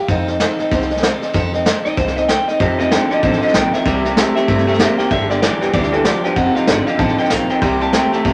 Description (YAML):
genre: rockabilly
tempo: 191 BPM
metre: 4/4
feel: swing 61% on 8ths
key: unclear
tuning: A4 = 441 Hz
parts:
  - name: electric guitar through a small old amp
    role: melody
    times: 0.0-8.2 s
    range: A4 to C6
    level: -23 LUFS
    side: equal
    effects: none
  - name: picked steel-string acoustic guitar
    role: accompaniment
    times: 0.0-8.3 s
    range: G2 to A4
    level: -23 LUFS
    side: equal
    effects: none
  - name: upright bass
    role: bass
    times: 0.1-8.3 s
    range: F1 to G2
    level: -26 LUFS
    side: equal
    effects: none
  - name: vintage brush drum kit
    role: drums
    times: 0.1-8.3 s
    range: hi-hat, kick drum, snare drum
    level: -21 LUFS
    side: equal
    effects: none
  - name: electric guitar through a small old amp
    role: riff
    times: 2.6-8.3 s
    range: F2 to Bb3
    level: -20 LUFS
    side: equal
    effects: none
room: wet small room reverb, RT60 0.5 s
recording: none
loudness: -16 LUFS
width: mono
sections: 0.0-8.3 A section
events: clean electric guitar solo 0.0-8.3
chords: 0.1 F7; 3.9 C7; 5.1 G7; 6.4 F7; 7.6 C7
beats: | 0.09 0.40 0.71 1.03 | 1.34 1.66 1.97 2.29 | 2.60 2.92 3.23 3.54 | 3.86 4.17 4.49 4.80 | 5.11 5.43 5.74 6.05 | 6.37 6.68 7.00 7.31 | 7.62 7.94 8.25